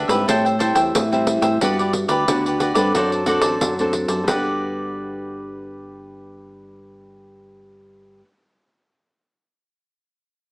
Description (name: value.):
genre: samba and choro.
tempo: 90 BPM.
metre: 4/4.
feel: straight.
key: G major.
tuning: A4 = 440 Hz.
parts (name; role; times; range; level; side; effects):
cavaquinho; accompaniment; 0.0-8.3 s; F#4 to G5; -22 LUFS; equal; none.
nylon-string guitar; accompaniment; 0.0-8.3 s; A2 to A4; -23 LUFS; equal; none.
deep dub fingered electric bass; bass; 0.0-8.2 s; G1 to A2; -27 LUFS; equal; none.
pandeiro; percussion; 0.1-4.4 s; none; -24 LUFS; equal; none.
room: moderate studio reverb, RT60 1.0 s.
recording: small speaker sound.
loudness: -17 LUFS.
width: side -36 dB against mid.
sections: 0.0-4.3 A section; 4.3-7.0 B section.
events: none.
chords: 0.3 Am7; 1.6 Gmaj7; 2.9 D7; 4.3 Gmaj7.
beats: 0.28 0.94 | 1.61 2.28 2.95 3.62 | 4.28 4.95 5.62 6.29.